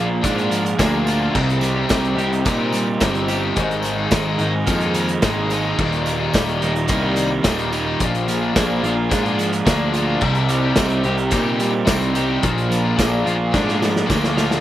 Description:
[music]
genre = indie rock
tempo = 108 BPM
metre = 4/4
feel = straight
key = unclear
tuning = A4 = 441 Hz
[part]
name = hollow soft pad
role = sustained chords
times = 0.0-14.6 s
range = G4 to Bb5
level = -28 LUFS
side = left 1 dB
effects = chorus
[part]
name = crunchy overdriven guitar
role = riff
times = 0.0-14.6 s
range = Eb2 to G4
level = -23 LUFS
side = right 5 dB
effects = slapback echo
[part]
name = overdriven electric guitar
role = riff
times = 0.0-14.6 s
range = Eb2 to G4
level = -24 LUFS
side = left 7 dB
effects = slapback echo
[part]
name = fuzz picked electric bass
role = bass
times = 0.0-14.6 s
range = Eb1 to Bb2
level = -22 LUFS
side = equal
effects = overdrive
[part]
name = loose indie drum kit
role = drums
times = 0.2-14.6 s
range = crash cymbal, hi-hat, kick drum, snare drum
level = -22 LUFS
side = equal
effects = none
[part]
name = tambourine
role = percussion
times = 0.2-14.5 s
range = none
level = -38 LUFS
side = right 5 dB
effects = none
[sound]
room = little or no reverb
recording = none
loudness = -16 LUFS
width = side -13 dB against mid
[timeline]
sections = 0.0-14.6 A section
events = drum fill 13.5-14.6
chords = 0.0 Bb7; 1.3 Cm7; 3.6 Abadd9; 5.8 Ebmaj7; 8.0 Bb7; 10.2 Cm7; 12.4 Bb7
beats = 0.23 0.78 | 1.34 1.89 2.45 3.00 | 3.56 4.12 4.67 5.23 | 5.78 6.34 6.89 7.45 | 8.00 8.56 9.11 9.66 | 10.22 10.77 11.32 11.88 | 12.43 12.98 13.53 14.09

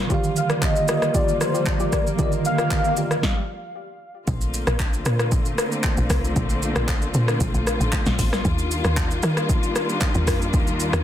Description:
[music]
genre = amapiano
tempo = 115 BPM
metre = 4/4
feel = straight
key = Bb major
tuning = A4 = 440 Hz
[part]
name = bell-like tine electric piano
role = accompaniment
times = 0.0-3.3 s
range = D3 to F5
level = -25 LUFS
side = right 6 dB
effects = none
[part]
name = dark studio string section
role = sustained chords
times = 0.0-11.0 s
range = D3 to F4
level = -28 LUFS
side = left 2 dB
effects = sidechain pumping
[part]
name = soft round pluck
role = stabs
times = 0.1-3.1 s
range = F4 to D5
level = -32 LUFS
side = left 4 dB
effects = chorus, digital delay
[part]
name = deep house drum kit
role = drums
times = 0.1-11.0 s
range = handclaps, hi-hat, kick drum, rim click, shaker, snare drum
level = -22 LUFS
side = equal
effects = overdrive
[part]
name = swell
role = sound effects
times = 1.3-3.2 s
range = none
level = -32 LUFS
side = left 4 dB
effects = none
[part]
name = warm velvety synth lead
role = melody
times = 0.4-3.5 s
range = C5 to F5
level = -25 LUFS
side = left 1 dB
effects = chorus, digital delay
[part]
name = woody log drum bass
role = bass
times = 4.3-11.0 s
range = A1 to Eb3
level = -23 LUFS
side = equal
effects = none
[sound]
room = light reverb, digital ambience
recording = dense, heavily limited modern master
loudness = -19 LUFS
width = side -11 dB against mid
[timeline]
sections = 0.0-4.3 A section; 4.3-11.0 B section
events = swell 1.3-4.3; stop 3.2-4.3; drop 4.3-11.0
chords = 0.1 Ebmaj9; 4.3 Bbmaj9; 8.4 Ebmaj9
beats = | 0.10 0.62 1.15 1.67 | 2.19 2.71 3.23 3.75 | 4.28 4.80 5.32 5.84 | 6.36 6.88 7.41 7.93 | 8.45 8.97 9.49 10.01 | 10.54

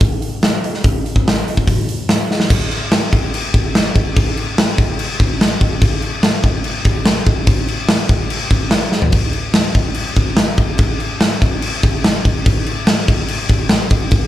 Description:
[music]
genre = rock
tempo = 144 BPM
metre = 4/4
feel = straight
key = none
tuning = none
[part]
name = big rock drum kit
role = drums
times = 0.0-14.2 s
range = crash cymbal, hi-hat, kick drum, snare drum, toms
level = -13 LUFS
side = equal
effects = none
[sound]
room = light reverb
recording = live gig heard through the venue's PA, club reverb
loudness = -13 LUFS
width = side -13 dB against mid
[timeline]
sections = 0.0-2.5 A section; 2.5-14.3 B section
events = drum fill 2.3, 8.9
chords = none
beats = 0.01 0.42 | 0.84 1.26 1.67 2.09 | 2.50 2.92 3.33 3.75 | 4.16 4.57 4.99 5.40 | 5.82 6.23 6.65 7.06 | 7.47 7.89 8.30 8.72 | 9.13 9.55 9.96 10.38 | 10.80 11.21 11.63 12.04 | 12.46 12.88 13.29 13.71 | 14.12

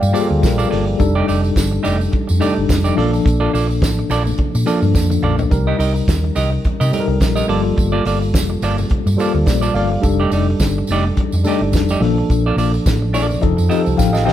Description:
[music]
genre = disco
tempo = 106 BPM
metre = 4/4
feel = swing 56% on 16ths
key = unclear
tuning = A4 = 441 Hz
[part]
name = mellow tine electric piano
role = accompaniment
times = 0.0-14.3 s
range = F3 to G5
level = -19 LUFS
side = left 2 dB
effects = medium stereo tremolo
[part]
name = semi-hollow electric guitar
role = accompaniment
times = 0.0-14.3 s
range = A3 to Eb5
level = -23 LUFS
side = right 4 dB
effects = none
[part]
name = hollow-body short-scale fingered electric bass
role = bass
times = 0.0-14.3 s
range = F1 to C3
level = -19 LUFS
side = equal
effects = none
[part]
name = tambourine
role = percussion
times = 0.0-14.3 s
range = none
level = -33 LUFS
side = right 4 dB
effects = none
[part]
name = damped 70s drum kit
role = drums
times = 0.1-14.3 s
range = hi-hat, kick drum, snare drum, toms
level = -20 LUFS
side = equal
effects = none
[part]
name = congas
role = percussion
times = 0.2-14.3 s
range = none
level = -29 LUFS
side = left 5 dB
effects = none
[sound]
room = moderate stone room reverb, RT60 1.2 s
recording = band playing live in one room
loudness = -14 LUFS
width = side -12 dB against mid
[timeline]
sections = 0.0-14.3 A section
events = tine electric piano fill 0.0-1.0, 8.9-10.0, 12.9-14.3; drum fill 5.0-5.5, 14.0-14.3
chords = 0.0 Gm9; 1.0 F13; 3.0 Bbmaj7; 5.5 Cm7; 7.5 Gm9; 10.0 F13; 12.0 Bbmaj7; 13.4 F7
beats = 0.43 | 1.00 1.56 2.13 2.69 | 3.26 3.82 4.39 4.95 | 5.52 6.08 6.65 7.21 | 7.78 8.34 8.91 9.47 | 10.04 10.60 11.17 11.73 | 12.29 12.86 13.42 13.99

